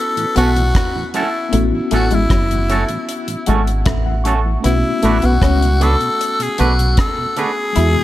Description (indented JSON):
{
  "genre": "lovers rock reggae",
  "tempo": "77 BPM",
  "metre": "4/4",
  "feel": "straight",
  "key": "unclear",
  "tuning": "A4 = 440 Hz",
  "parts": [
    { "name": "raspy tenor saxophone", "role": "melody", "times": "0.0-8.0 s", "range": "E4 to A4", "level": "-20 LUFS", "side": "left 2 dB", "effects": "tape echo" },
    { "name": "mellow tine electric piano", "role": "accompaniment", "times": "0.0-8.0 s", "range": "G#3 to C#6", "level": "-24 LUFS", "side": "left 3 dB", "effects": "medium stereo tremolo" },
    { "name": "mellow tonewheel organ", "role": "accompaniment", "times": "0.2-8.0 s", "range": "E2 to C#4", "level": "-27 LUFS", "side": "right 3 dB", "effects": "chorus vibrato, slow rotary speaker" },
    { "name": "deep reggae drum kit", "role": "drums", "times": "0.2-7.9 s", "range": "hi-hat, kick drum, rim click", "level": "-19 LUFS", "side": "equal", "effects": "gated reverb" },
    { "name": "electric guitar through a small old amp", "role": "riff", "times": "0.4-7.9 s", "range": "F#3 to E4", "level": "-22 LUFS", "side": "left 3 dB", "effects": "none" },
    { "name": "twangy electric guitar", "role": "stabs", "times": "0.4-7.5 s", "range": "A3 to B4", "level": "-24 LUFS", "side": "right 5 dB", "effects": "none" },
    { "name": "deep dub fingered electric bass", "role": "bass", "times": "0.4-7.9 s", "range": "F#1 to E2", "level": "-16 LUFS", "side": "equal", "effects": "none" }
  ],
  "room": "small room ambience",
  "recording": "none",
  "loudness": "-14 LUFS",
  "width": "side -14 dB against mid",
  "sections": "0.0-8.0 A section",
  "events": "tine electric piano fill 3.1-4.6",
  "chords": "0.0 A6; 4.6 Bm7"
}